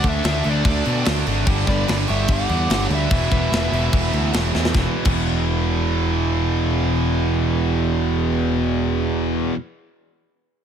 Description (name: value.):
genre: hard rock.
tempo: 146 BPM.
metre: 4/4.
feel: straight.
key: unclear.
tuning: A4 = 440 Hz.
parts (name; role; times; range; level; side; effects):
dark smooth lead guitar; melody; 0.0-4.3 s; C#5 to F#5; -27 LUFS; left 1 dB; overdrive, digital delay.
octave-fuzz lead guitar; second line; 0.0-4.3 s; A4 to D5; -32 LUFS; right 2 dB; distortion.
heavy high-gain guitar; riff; 0.0-9.6 s; E2 to D4; -28 LUFS; left 1 dB; distortion.
overdriven electric guitar; riff; 0.0-9.6 s; E2 to D4; -25 LUFS; right 14 dB; none.
scooped high-gain guitar; riff; 0.0-9.6 s; E2 to D4; -27 LUFS; left 10 dB; distortion.
fuzz picked electric bass; bass; 0.0-9.5 s; E1 to B2; -22 LUFS; equal; overdrive.
tight metal drum kit; drums; 0.0-5.2 s; crash cymbal, kick drum, snare drum; -22 LUFS; equal; none.
room: little or no reverb.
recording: none.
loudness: -18 LUFS.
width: side -8 dB against mid.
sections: 0.0-4.8 A section; 4.8-8.0 B section.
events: drum fill 4.5.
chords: 0.0 D5; 1.5 G5; 3.1 E5.